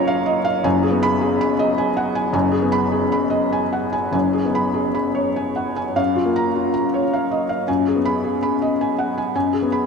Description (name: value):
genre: neoclassical minimalist piano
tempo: 95-110 BPM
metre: 3/4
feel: rubato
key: F# major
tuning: A4 = 442 Hz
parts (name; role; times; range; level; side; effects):
- felt-muted upright piano; solo; 0.0-9.9 s; F#1 to B5; -17 LUFS; left 1 dB; none
room: wet cathedral reverb, RT60 6.3 s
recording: in a vast, echoing space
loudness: -17 LUFS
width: side -5 dB against mid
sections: 0.0-6.0 A section; 6.0-9.9 B section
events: none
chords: 0.0 F#maj7; 0.6 G#m7/F#; 4.1 C#7sus4/F#; 6.0 F#maj7; 7.7 G#m7/F#